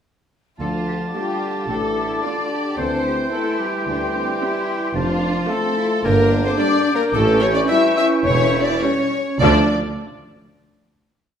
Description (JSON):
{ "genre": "cinematic, playful, whimsical film cue", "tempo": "109 BPM", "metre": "4/4", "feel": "uneven beats", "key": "D minor", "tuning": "A4 = 439 Hz", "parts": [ { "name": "warm symphonic violin section", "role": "melody", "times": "0.6-9.7 s", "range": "F4 to E5", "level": "-27 LUFS", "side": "left 3 dB", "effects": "none" }, { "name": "clear clarinet", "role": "second line", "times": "0.6-9.6 s", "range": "F4 to E5", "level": "-25 LUFS", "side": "left 2 dB", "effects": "none" }, { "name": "clear oboe", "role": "second line", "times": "0.6-9.6 s", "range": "G5 to A5", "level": "-29 LUFS", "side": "right 1 dB", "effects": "none" }, { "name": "mellow small flute group", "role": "second line", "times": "0.6-9.7 s", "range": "C6 to D6", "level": "-29 LUFS", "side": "left 6 dB", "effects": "none" }, { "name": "warm chamber violin section", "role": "second line", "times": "0.6-9.7 s", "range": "F4 to E5", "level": "-28 LUFS", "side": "left 1 dB", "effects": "none" }, { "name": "mellow bassoon", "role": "accompaniment", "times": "0.6-9.6 s", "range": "D3 to F3", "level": "-28 LUFS", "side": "right 1 dB", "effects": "none" }, { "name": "mellow French horn section", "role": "sustained chords", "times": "0.6-9.7 s", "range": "F3 to E4", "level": "-24 LUFS", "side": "left 3 dB", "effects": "none" }, { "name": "clear tuba", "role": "bass", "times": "0.6-9.6 s", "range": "E1 to D2", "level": "-26 LUFS", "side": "right 4 dB", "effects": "none" }, { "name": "rich studio cello section", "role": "bass", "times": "0.6-9.7 s", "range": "D2 to A4", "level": "-27 LUFS", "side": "right 2 dB", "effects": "none" }, { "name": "warm chamber double bass section", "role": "bass", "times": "0.6-9.7 s", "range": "E1 to D2", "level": "-24 LUFS", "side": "right 3 dB", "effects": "none" }, { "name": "rich chamber viola section", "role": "accompaniment", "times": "1.1-9.7 s", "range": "F3 to F4", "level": "-27 LUFS", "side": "right 1 dB", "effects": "none" } ], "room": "wet recital hall reverb, RT60 1.4 s", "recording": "none", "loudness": "-17 LUFS", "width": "side -8 dB against mid", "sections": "0.6-9.4 A section; 9.4-11.4 final chord", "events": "none", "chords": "0.6 Dm; 2.8 C/D; 5.0 F; 6.0 G5; 7.1 A7; 9.4 Dm" }